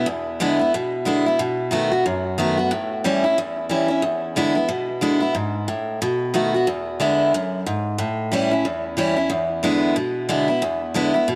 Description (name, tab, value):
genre	rock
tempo	182 BPM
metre	4/4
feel	swing 59% on 8ths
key	E mixolydian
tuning	A4 = 440 Hz
part	picked steel-string acoustic guitar	solo	0.0-11.4 s	E2 to F#4	-21 LUFS	equal	tape echo
room	light reverb, studio ambience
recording	none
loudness	-21 LUFS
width	mono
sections	0.0-6.7 A section; 6.7-11.4 B section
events	none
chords	0.0 E7; 1.4 B7; 2.7 A7; 4.0 E7; 6.0 B7; 6.7 E7; 8.0 A7; 9.3 E7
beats	| 0.07 0.40 0.73 1.06 | 1.39 1.72 2.05 2.38 | 2.71 3.04 3.37 3.70 | 4.03 4.36 4.69 5.02 | 5.35 5.68 6.01 6.34 | 6.67 7.00 7.33 7.66 | 7.99 8.32 8.65 8.98 | 9.31 9.64 9.97 10.30 | 10.63 10.96 11.29